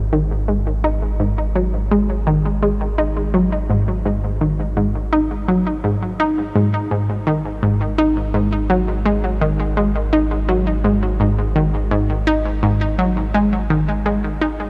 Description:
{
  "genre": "ambient, sequencer-driven space music",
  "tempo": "84 BPM",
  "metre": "4/4",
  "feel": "straight",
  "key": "unclear",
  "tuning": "A4 = 440 Hz",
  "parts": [
    { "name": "analog pluck", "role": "riff", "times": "0.0-14.6 s", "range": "G#2 to D#4", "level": "-20 LUFS", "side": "equal", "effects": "chorus, delay" },
    { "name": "warm sub bass", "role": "bass", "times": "0.0-14.7 s", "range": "G#1", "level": "-25 LUFS", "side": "equal", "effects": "none" }
  ],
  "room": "moderate huge ambient reverb, RT60 7.5 s",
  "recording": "none",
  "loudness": "-19 LUFS",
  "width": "mono",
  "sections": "0.0-14.7 A section",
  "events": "none",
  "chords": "0.0 G#5",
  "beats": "0.13 | 0.84 1.56 2.27 2.98 | 3.70 4.41 5.13 5.84 | 6.56 7.27 7.98 8.70 | 9.41 10.13 10.84 11.56 | 12.27 12.98 13.70 14.41"
}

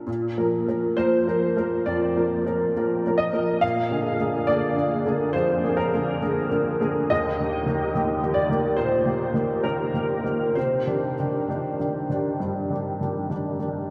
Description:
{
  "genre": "neoclassical minimalist piano",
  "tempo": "69 BPM",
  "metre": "4/4",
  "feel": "uneven beats, rubato",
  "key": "Bb major",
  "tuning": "A4 = 438 Hz",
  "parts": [
    { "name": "clear upright piano", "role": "solo", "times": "0.0-13.9 s", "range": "Eb2 to F5", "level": "-24 LUFS", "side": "equal", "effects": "ensemble chorus" }
  ],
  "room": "wet cathedral reverb, RT60 6.7 s",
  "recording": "dreamy mix soaked in reverb",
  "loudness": "-24 LUFS",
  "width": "mono",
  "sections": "0.1-13.9 A section",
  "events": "none",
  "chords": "0.1 Bb; 3.6 Bb7; 7.1 Eb; 10.6 Cmadd9",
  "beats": "| 0.07 0.98 1.87 2.75 | 3.62 4.49 5.35 6.21 | 7.10 7.94 8.78 9.65 | 10.56 11.48 12.40 13.30"
}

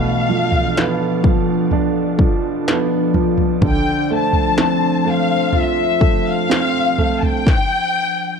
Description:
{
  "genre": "pop ballad",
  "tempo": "63 BPM",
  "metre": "4/4",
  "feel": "straight",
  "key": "unclear",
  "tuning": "A4 = 440 Hz",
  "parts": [
    { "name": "warm studio violin section", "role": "melody", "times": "0.0-8.4 s", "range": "E5 to A5", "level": "-20 LUFS", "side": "left 5 dB", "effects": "none" },
    { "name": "clear baby grand piano", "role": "accompaniment", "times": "0.0-7.5 s", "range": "B2 to F4", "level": "-20 LUFS", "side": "right 7 dB", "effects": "none" },
    { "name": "glassy FM pad", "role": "sustained chords", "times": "0.0-7.4 s", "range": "F3 to C5", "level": "-21 LUFS", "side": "left 3 dB", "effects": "ensemble chorus, built-in reverb" },
    { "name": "industrial drum kit", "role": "drums", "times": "0.5-7.7 s", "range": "kick drum, snare drum, toms", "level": "-18 LUFS", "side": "equal", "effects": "none" }
  ],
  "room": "little or no reverb",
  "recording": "dry, close 1970s-style studio recording",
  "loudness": "-14 LUFS",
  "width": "side -6 dB against mid",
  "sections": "0.0-8.4 A section",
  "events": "none",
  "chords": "0.0 Bdim; 3.6 Dm7; 7.5 N.C.",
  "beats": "0.76 1.71 2.66 | 3.62 4.58 5.53 6.50 | 7.47"
}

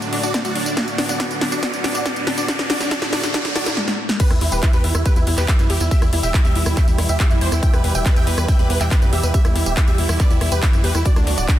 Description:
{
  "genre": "uplifting trance",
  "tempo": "140 BPM",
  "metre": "4/4",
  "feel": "straight",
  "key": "E minor",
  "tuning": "A4 = 440 Hz",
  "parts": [
    { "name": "big supersaw lead", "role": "melody", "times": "0.0-11.6 s", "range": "D4 to G5", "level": "-25 LUFS", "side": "right 1 dB", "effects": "phaser, sidechain pumping, dub echo" },
    { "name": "lush unison pad", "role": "sustained chords", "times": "0.0-11.6 s", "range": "A2 to G4", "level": "-28 LUFS", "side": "right 1 dB", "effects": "chorus, sidechain pumping" },
    { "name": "big-room dance drum kit", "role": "drums", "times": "0.0-11.6 s", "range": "crash cymbal, handclaps, hi-hat, rim click, snare drum, tambourine", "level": "-23 LUFS", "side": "equal", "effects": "sidechain pumping on hats, sidechain pumping on perc, sidechain pumping on cymbals" },
    { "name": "riser", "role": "sound effects", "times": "0.0-3.8 s", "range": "none", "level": "-28 LUFS", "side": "right 1 dB", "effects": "none" },
    { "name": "wide unison pluck", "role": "arpeggios", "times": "0.1-3.6 s", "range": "A3 to D4", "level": "-28 LUFS", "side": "left 2 dB", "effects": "cassette tape, sidechain pumping, tape echo" },
    { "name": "electronic kick drum", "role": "drums", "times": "0.3-11.6 s", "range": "none", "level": "-16 LUFS", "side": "equal", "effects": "high-pass filter on kick" },
    { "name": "wide unison pluck", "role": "second line", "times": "4.2-11.6 s", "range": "D4 to G5", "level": "-30 LUFS", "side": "right 1 dB", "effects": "sidechain pumping, tape echo" },
    { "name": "tight sequencer bass", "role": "bass", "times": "4.3-11.5 s", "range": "D1 to F#2", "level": "-20 LUFS", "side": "equal", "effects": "sidechain pumping" }
  ],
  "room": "light reverb, digital ambience",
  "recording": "dense, heavily limited modern master",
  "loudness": "-16 LUFS",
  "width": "side -12 dB against mid",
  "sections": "0.0-4.2 A section; 4.2-11.6 B section",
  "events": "build-up 0.0-4.2; drum fill 0.0-3.8, 3.8-4.2; riser 0.0-3.8; drop 4.2-11.6",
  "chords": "0.0 D; 0.8 Bm7; 4.2 Em; 11.1 D",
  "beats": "0.34 | 0.77 1.20 1.63 2.06 | 2.48 2.91 3.34 3.77 | 4.20 4.63 5.05 5.48 | 5.91 6.34 6.77 7.20 | 7.63 8.05 8.48 8.91 | 9.34 9.77 10.20 10.63 | 11.05 11.48"
}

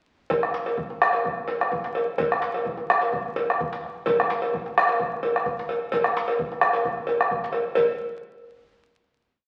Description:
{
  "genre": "west african traditional, West African drum ensemble",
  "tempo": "129 BPM",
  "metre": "4/4",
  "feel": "swing 53% on 16ths",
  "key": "none",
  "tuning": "none",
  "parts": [
    { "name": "bombo", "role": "percussion", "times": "0.3-8.0 s", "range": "none", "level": "-27 LUFS", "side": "equal", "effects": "none" },
    { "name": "cowbell", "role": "percussion", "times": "0.3-8.0 s", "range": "none", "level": "-29 LUFS", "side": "equal", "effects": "none" },
    { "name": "djembe", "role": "percussion", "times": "0.3-8.0 s", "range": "none", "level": "-37 LUFS", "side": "equal", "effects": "none" }
  ],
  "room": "wet large studio reverb, RT60 1.3 s",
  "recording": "very old 78 rpm record, vinyl crackle",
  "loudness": "-25 LUFS",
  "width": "mono",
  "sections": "0.3-7.8 A section; 7.8-9.5 final hit",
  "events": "none",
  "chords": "none",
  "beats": "| 0.30 0.78 1.25 1.72 | 2.19 2.66 3.13 3.60 | 4.07 4.53 5.00 5.46 | 5.92 6.39 6.85 7.30 | 7.76"
}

